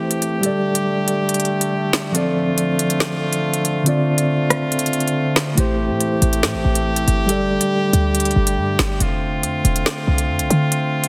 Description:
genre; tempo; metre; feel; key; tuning
hip hop, drill; 140 BPM; 4/4; half-time; unclear; A4 = 440 Hz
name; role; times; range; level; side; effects
mellow tine electric piano; accompaniment; 0.0-9.0 s; D3 to D5; -23 LUFS; equal; none
bright brass ensemble; sustained chords; 0.0-11.1 s; D3 to G4; -24 LUFS; equal; none
drill drum kit; drums; 0.1-11.1 s; hi-hat, rim click, snare drum; -24 LUFS; equal; overdrive
short 808-style bass; bass; 5.6-11.1 s; E1 to D3; -22 LUFS; equal; none
room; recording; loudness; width
light reverb; dense, heavily limited modern master; -19 LUFS; mono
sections
0.0-11.1 A section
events
break 0.0-5.6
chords
0.4 Gsus2; 2.1 Dm7; 5.6 Am7; 7.3 Gsus2; 9.0 F6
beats
0.00 | 0.43 0.86 1.29 1.72 | 2.15 2.58 3.00 3.43 | 3.86 4.29 4.72 5.15 | 5.58 6.00 6.43 6.86 | 7.29 7.72 8.15 8.57 | 9.00 9.43 9.86 10.29 | 10.72

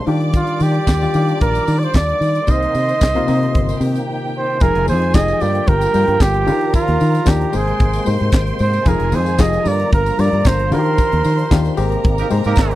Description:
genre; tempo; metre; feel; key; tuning
disco; 113 BPM; 4/4; straight; unclear; A4 = 440 Hz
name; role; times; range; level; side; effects
warm studio violin section; second line; 0.0-12.8 s; G4 to D6; -26 LUFS; right 2 dB; none
barky reed electric piano; accompaniment; 0.0-12.8 s; C3 to Eb5; -22 LUFS; left 6 dB; overdrive
percussive tonewheel organ; sustained chords; 0.0-12.8 s; C3 to G5; -28 LUFS; right 2 dB; overdrive, chorus vibrato, slow rotary speaker
fingered electric bass; bass; 0.1-12.7 s; F1 to Eb3; -18 LUFS; equal; none
tight funk drum kit; drums; 0.1-12.8 s; handclaps, hi-hat, kick drum, snare drum; -14 LUFS; equal; none
tambourine; percussion; 0.3-12.7 s; none; -38 LUFS; left 15 dB; none
clear flugelhorn; melody; 0.4-11.7 s; F4 to Eb5; -19 LUFS; right 2 dB; tube saturation
clear horn section; stabs; 12.2-12.8 s; Bb3 to Bb4; -22 LUFS; right 6 dB; none
room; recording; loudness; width
small room ambience; dry, close 1970s-style studio recording; -14 LUFS; side -15 dB against mid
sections
0.0-4.6 A section; 4.6-12.8 B section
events
break 4.1-4.6; band accent 11.0-12.8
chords
0.1 Ebmaj9; 2.5 Cm7; 4.6 Fm9; 5.4 Gm7; 6.5 Ebmaj9; 7.5 Abmaj9; 8.9 Fm9; 9.7 Gm7; 10.7 Ebmaj9; 11.8 Abmaj9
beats
| 0.34 0.88 1.41 1.94 | 2.48 3.01 3.54 4.08 | 4.61 5.14 5.67 6.21 | 6.74 7.27 7.80 8.33 | 8.86 9.39 9.92 10.45 | 10.98 11.51 12.04 12.57

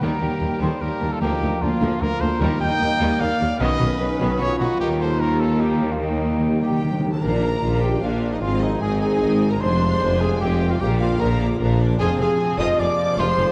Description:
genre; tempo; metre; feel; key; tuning
cinematic, heroic adventure film score; 151 BPM; 3/4; straight; Eb lydian; A4 = 440 Hz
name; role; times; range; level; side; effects
warm symphonic violin section; melody; 0.0-13.5 s; Bb3 to Eb6; -35 LUFS; equal; none
dark clarinet; second line; 0.0-7.0 s; Bb3 to C#4; -33 LUFS; equal; none
mellow cor anglais; second line; 0.0-13.5 s; Eb4 to A5; -35 LUFS; equal; none
mellow hollow small flute group; second line; 0.0-13.5 s; Eb5 to G6; -37 LUFS; equal; none
rich symphonic violin section; second line; 0.0-13.5 s; G3 to D6; -38 LUFS; equal; none
rich symphonic viola section; accompaniment; 0.0-13.5 s; Eb3 to F4; -34 LUFS; equal; none
bright trombone section; sustained chords; 0.0-13.5 s; C3 to D4; -33 LUFS; equal; none
mellow French horn section; sustained chords; 0.0-13.5 s; G3 to Eb5; -29 LUFS; equal; none
concert harp; arpeggios; 0.0-13.5 s; F2 to C6; -35 LUFS; equal; none
warm trumpet; stabs; 0.0-13.5 s; Eb4 to G5; -31 LUFS; equal; none
rich chamber cello section; bass; 0.0-13.5 s; D2 to B2; -28 LUFS; equal; none
rich symphonic double bass section; bass; 0.0-13.5 s; F1 to Eb2; -29 LUFS; equal; none
warm tuba; bass; 0.0-13.5 s; F1 to Eb2; -30 LUFS; equal; none
timpani; percussion; 0.0-3.0, 6.0-7.2 s; Eb3; -32 LUFS; equal; none
room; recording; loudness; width
moderate concert hall reverb, RT60 2.1 s; dark, warm production; -21 LUFS; mono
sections
0.0-7.2 A section; 7.2-13.5 B section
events
timpani fill 6.0-7.2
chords
0.0 Eb; 1.2 Bb/D; 2.4 Eb; 3.6 Badd9; 4.8 Eb; 7.2 Bb; 8.4 Ab; 9.6 Fm; 10.8 Bb; 12.0 Fm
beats
| 0.02 0.41 0.81 | 1.21 1.61 2.00 | 2.40 2.81 3.20 | 3.60 4.00 4.39 | 4.79 5.19 5.59 | 6.00 6.41 6.81 | 7.22 7.62 8.02 | 8.41 8.81 9.21 | 9.61 10.00 10.40 | 10.80 11.20 11.60 | 11.99 12.39 12.79 | 13.18

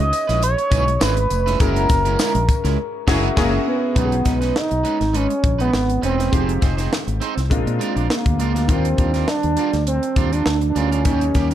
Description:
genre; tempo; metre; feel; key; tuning
polished 1980s jazz-funk pop; 102 BPM; 4/4; swing 54% on 16ths; unclear; A4 = 445 Hz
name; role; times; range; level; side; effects
expressive synth lead; melody; 0.0-11.5 s; A#3 to D#5; -21 LUFS; right 2 dB; chorus
warm grand piano; accompaniment; 0.0-11.5 s; D#3 to B4; -27 LUFS; left 3 dB; analog chorus
electric guitar at the edge of break-up; riff; 0.0-11.5 s; G3 to C5; -27 LUFS; right 8 dB; wide subtle chorus
fingered electric bass; bass; 0.0-11.5 s; E1 to A#2; -21 LUFS; left 1 dB; none
crisp fusion drum kit; drums; 0.1-11.5 s; crash cymbal, hi-hat, kick drum, snare drum; -22 LUFS; equal; none
tambourine; percussion; 0.1-2.6 s; none; -34 LUFS; left 9 dB; none
warm horn section; second line; 3.1-3.5 s; A#3 to C#5; -30 LUFS; left 3 dB; none
room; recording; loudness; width
light reverb, small room ambience; dark, warm production; -16 LUFS; side -11 dB against mid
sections
0.0-4.0 A section; 4.0-11.5 B section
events
band accent 1.6-4.0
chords
0.0 C#m7; 1.6 F#9; 4.0 B69; 6.3 Fm7; 7.5 A#7; 8.7 D#maj9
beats
0.43 1.01 | 1.60 2.19 2.79 3.38 | 3.96 4.56 5.15 5.74 | 6.33 6.92 7.51 8.10 | 8.69 9.28 9.87 10.46 | 11.06

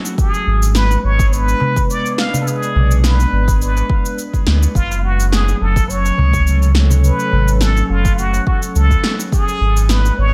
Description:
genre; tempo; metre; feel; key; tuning
organic downtempo; 105 BPM; 4/4; swing 54% on 16ths; unclear; A4 = 440 Hz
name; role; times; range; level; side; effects
warbly tape-like pad; sustained chords; 0.0-10.3 s; F#3 to D5; -27 LUFS; equal; chorus, built-in reverb, sidechain pumping
electronic cabasa and snare drum; drums; 0.1-10.2 s; none; -25 LUFS; equal; overdrive
trumpet with plunger mute; melody; 0.2-10.3 s; E#4 to E#5; -23 LUFS; equal; delay
electronic kick drum; drums; 0.2-9.4 s; none; -19 LUFS; equal; overdrive
darbuka; percussion; 0.3-9.6 s; none; -26 LUFS; equal; none
warm sub bass; bass; 0.5-10.3 s; F#1 to D2; -16 LUFS; equal; tube saturation, sidechain pumping
room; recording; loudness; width
light reverb; none; -15 LUFS; mono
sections
0.0-10.3 A section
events
none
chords
0.2 G#dim; 4.8 F#m; 9.3 G#dim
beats
| 0.18 0.75 1.32 1.90 | 2.47 3.04 3.61 4.18 | 4.75 5.32 5.89 6.47 | 7.04 7.61 8.18 8.75 | 9.32 9.89

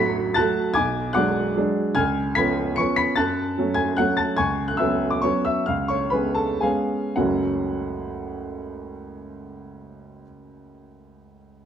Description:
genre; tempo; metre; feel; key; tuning
classical, piano waltz; 107-160 BPM; 3/4; rubato; F# minor; A4 = 440 Hz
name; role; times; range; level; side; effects
clear upright piano; solo; 0.0-11.7 s; F#1 to C#7; -21 LUFS; equal; none
room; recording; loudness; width
wet recital hall reverb, RT60 1.7 s; dark, warm production; -20 LUFS; side -9 dB against mid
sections
0.0-7.2 A section; 7.2-10.2 B section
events
slowing down 3.8-7.2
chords
0.0 F#m/A; 0.8 G#m7b5/B; 2.0 C#7; 3.2 F#m; 4.4 C#7sus4; 5.7 C#7; 7.2 F#m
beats
0.37 | 0.77 1.16 1.57 | 1.98 2.37 2.78 | 3.18 3.57 3.98 | 4.39 4.80 5.25 | 5.68 6.13 6.64 | 7.18 7.67 8.19 | 8.70 9.22 9.74

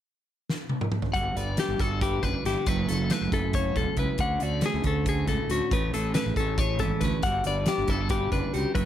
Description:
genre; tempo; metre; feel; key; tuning
math rock and midwest emo; 276 BPM (eighths); 7/8; straight; unclear; A4 = 435 Hz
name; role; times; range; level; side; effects
loose indie drum kit; drums; 0.5-8.9 s; hi-hat, kick drum, snare drum, toms; -29 LUFS; equal; none
clean electric guitar; arpeggios; 1.1-8.9 s; F#4 to F#5; -29 LUFS; left 6 dB; slapback echo
fuzz fingered electric bass; bass; 1.1-8.9 s; E1 to D2; -30 LUFS; equal; overdrive
twelve-string electric guitar; accompaniment; 1.2-8.9 s; A2 to B4; -31 LUFS; right 8 dB; none
room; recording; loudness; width
light reverb; none; -24 LUFS; side -11 dB against mid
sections
0.0-1.1 A section; 1.1-8.9 B section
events
drum fill 0.5-1.1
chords
0.0 N.C.; 1.1 Gmaj7; 2.7 F#m7; 4.2 Dmaj7; 5.7 Amaj7; 7.2 Gmaj7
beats
0.05 0.27 0.49 0.70 0.92 | 1.14 1.36 1.58 1.79 2.01 2.23 2.45 | 2.67 2.88 3.10 3.32 3.54 3.75 3.97 | 4.19 4.41 4.62 4.84 5.06 5.28 5.49 | 5.71 5.93 6.15 6.36 6.58 6.80 7.01 | 7.23 7.45 7.67 7.88 8.10 8.32 8.54 | 8.75

